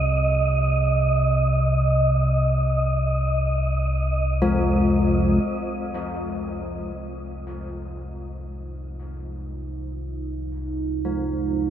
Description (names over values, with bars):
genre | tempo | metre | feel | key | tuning
dark ambient drone | free time | none | none | C minor | A4 = 441 Hz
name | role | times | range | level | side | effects
old church bells | arpeggios | 0.0-11.7 s | F3 to F4 | -25 LUFS | left 2 dB | tape echo
deep rumbling drone | drone | 0.0-11.7 s | C2 to C3 | -24 LUFS | equal | built-in reverb
wind-like tuned noise texture | texture | 0.0-5.5 s | Eb5 | -26 LUFS | right 2 dB | built-in reverb
deep dark ambient pad | sustained chords | 9.0-11.7 s | Eb4 to C5 | -29 LUFS | right 8 dB | chorus, built-in reverb
room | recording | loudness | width
wet huge ambient reverb, RT60 8.4 s | dark, warm production | -20 LUFS | side -10 dB against mid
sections
0.0-5.4 A section; 5.4-11.7 B section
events
none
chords
0.0 Cm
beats
free time